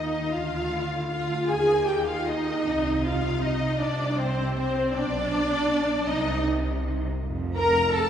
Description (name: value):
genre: classical, slow romantic movement for string orchestra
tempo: 52 BPM (dotted quarters)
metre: 6/8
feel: rubato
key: unclear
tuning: A4 = 442 Hz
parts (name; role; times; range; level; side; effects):
- warm studio violin section; melody; 0.0-8.1 s; C5 to Bb5; -32 LUFS; left 5 dB; none
- rich studio violin section; second line; 0.0-8.1 s; C5 to Bb5; -33 LUFS; left 1 dB; none
- dark studio viola section; accompaniment; 0.0-8.1 s; C4 to Bb4; -26 LUFS; right 1 dB; none
- warm studio cello section; bass; 0.0-8.1 s; F2 to Eb3; -31 LUFS; right 1 dB; none
- warm studio double bass section; bass; 0.0-8.1 s; F1 to Eb2; -33 LUFS; right 1 dB; none
room: wet church reverb, RT60 2.7 s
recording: recorded in a church or concert hall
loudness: -23 LUFS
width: side -9 dB against mid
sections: 0.0-8.1 A section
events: none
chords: 0.3 Dm; 1.5 Ebadd11; 2.7 Cmadd9; 4.9 Bm; 6.1 Cm; 7.2 Fadd11